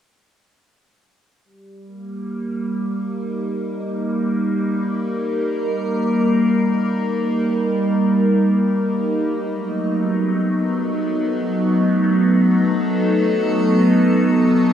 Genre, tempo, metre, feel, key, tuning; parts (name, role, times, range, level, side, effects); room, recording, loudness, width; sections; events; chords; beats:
ambient; free time; A4 = 440 Hz
evolving wavetable pad; sustained chords; 2.0-14.7 s; F#3 to Bb4; -17 LUFS; equal; phaser, built-in reverb
wet huge ambient reverb, RT60 8.5 s; dark, warm production; -17 LUFS; side -9 dB against mid
1.4-14.7 A section
filter sweep on ambient pad 1.4-14.7
1.4 Eb; 9.1 B7
free time